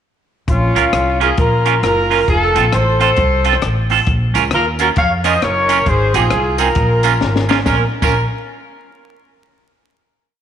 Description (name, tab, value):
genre	ska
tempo	134 BPM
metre	4/4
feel	swing 62% on 8ths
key	Bb minor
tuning	A4 = 440 Hz
part	mellow horn section	melody	0.5-8.2 s	Db4 to F5	-16 LUFS	equal	none
part	upright bass	bass	0.5-8.2 s	F1 to F2	-18 LUFS	equal	none
part	compact cocktail drum kit	drums	0.5-8.1 s	crash cymbal, hi-hat, kick drum, rim click, snare drum	-21 LUFS	left 2 dB	none
part	clean electric guitar	accompaniment	0.8-8.1 s	C4 to Bb4	-18 LUFS	right 10 dB	harmonic tremolo
part	tambourine	percussion	4.4-8.2 s	none	-35 LUFS	left 11 dB	none
room	moderate echo chamber reverb, RT60 2.2 s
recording	1960s-style stereo with parts hard left and right, vinyl crackle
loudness	-12 LUFS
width	side -9 dB against mid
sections	0.5-7.7 A section; 7.7-9.5 final chord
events	drum fill 7.2-7.7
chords	0.5 Bbm; 2.3 F; 4.1 Bbm; 5.9 Ab; 6.8 Bbm